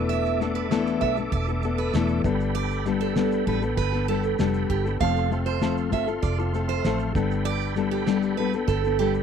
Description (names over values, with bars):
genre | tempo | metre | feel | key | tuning
acoustic pop | 98 BPM | 4/4 | straight | unclear | A4 = 440 Hz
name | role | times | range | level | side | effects
nylon-string guitar | accompaniment | 0.0-9.2 s | E2 to A4 | -25 LUFS | left 8 dB | none
tonewheel organ | sustained chords | 0.0-9.2 s | A4 to D6 | -34 LUFS | right 5 dB | chorus vibrato, fast rotary speaker
vintage muted fingered electric bass | bass | 0.0-9.2 s | E1 to B1 | -28 LUFS | right 2 dB | none
picked steel-string acoustic guitar | arpeggios | 0.1-9.1 s | G4 to F5 | -29 LUFS | right 16 dB | none
cloth-damped thuddy drum kit | drums | 0.1-9.2 s | kick drum, shaker, snare drum | -29 LUFS | right 2 dB | none
room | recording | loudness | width
small room ambience | dry, close 1970s-style studio recording | -22 LUFS | side -7 dB against mid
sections
0.0-9.2 A section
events
none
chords
0.0 E7sus4; 2.2 Gadd9; 5.0 F; 7.1 Gadd9